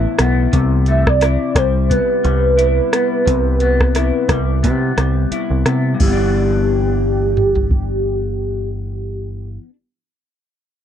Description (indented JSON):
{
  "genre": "indie pop, bedroom pop",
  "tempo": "88 BPM",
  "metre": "4/4",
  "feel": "swing 55% on 16ths",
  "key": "G major",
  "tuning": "A4 = 440 Hz",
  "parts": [
    { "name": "electric guitar through a small old amp", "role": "accompaniment", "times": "0.0-9.7 s", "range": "G2 to E4", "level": "-21 LUFS", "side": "left 6 dB", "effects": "analog chorus, vibrato effect" },
    { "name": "deep dub picked electric bass", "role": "bass", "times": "0.0-9.6 s", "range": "G1 to C3", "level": "-17 LUFS", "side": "equal", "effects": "none" },
    { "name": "soft vintage rhythm box", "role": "drums", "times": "0.2-7.9 s", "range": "crash cymbal, hi-hat, kick drum, rim click, toms", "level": "-18 LUFS", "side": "equal", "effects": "none" },
    { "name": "warm velvety synth lead", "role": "melody", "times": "0.9-9.5 s", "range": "G4 to E5", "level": "-19 LUFS", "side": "right 2 dB", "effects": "lush chorus, slapback echo" }
  ],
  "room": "little or no reverb",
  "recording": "dry, close 1970s-style studio recording",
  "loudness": "-14 LUFS",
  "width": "side -9 dB against mid",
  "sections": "0.0-6.0 A section; 6.0-8.7 B section",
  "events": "none",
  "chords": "0.0 Asus2; 0.5 Cmaj7; 6.0 G6"
}